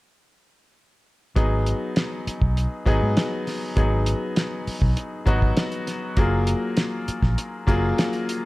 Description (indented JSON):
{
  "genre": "lush 1970s-style soul",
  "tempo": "100 BPM",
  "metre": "4/4",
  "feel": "straight",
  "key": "G# dorian",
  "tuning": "A4 = 440 Hz",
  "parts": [
    { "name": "bright grand piano", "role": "accompaniment", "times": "1.4-8.5 s", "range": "F#3 to G#4", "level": "-25 LUFS", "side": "left 2 dB", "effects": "none" },
    { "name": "vintage muted fingered electric bass", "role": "bass", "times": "1.4-7.9 s", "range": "F#1 to G#2", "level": "-23 LUFS", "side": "equal", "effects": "none" },
    { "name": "cloth-damped thuddy drum kit", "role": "drums", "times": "1.4-8.4 s", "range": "hi-hat, kick drum, snare drum", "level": "-23 LUFS", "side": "equal", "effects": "none" }
  ],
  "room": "light reverb",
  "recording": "dark, warm production",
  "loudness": "-21 LUFS",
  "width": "side -19 dB against mid",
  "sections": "1.4-8.5 A section",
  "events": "none",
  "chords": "1.4 G#m7; 6.2 F#maj9"
}